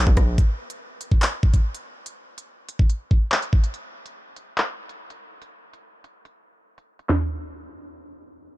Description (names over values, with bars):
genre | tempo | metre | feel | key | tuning
hip hop | 143 BPM | 4/4 | half-time | none | none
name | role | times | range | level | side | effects
drill drum kit | drums | 0.1-7.2 s | handclaps, hi-hat, kick drum, rim click, snare drum, toms | -20 LUFS | equal | none
room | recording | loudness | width
little or no reverb | dark, warm production, low-pass filter | -20 LUFS | side -18 dB against mid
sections
0.4-7.1 A section; 7.1-8.6 B section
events
filter sweep 0.4-7.1; break 6.3-7.1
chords
none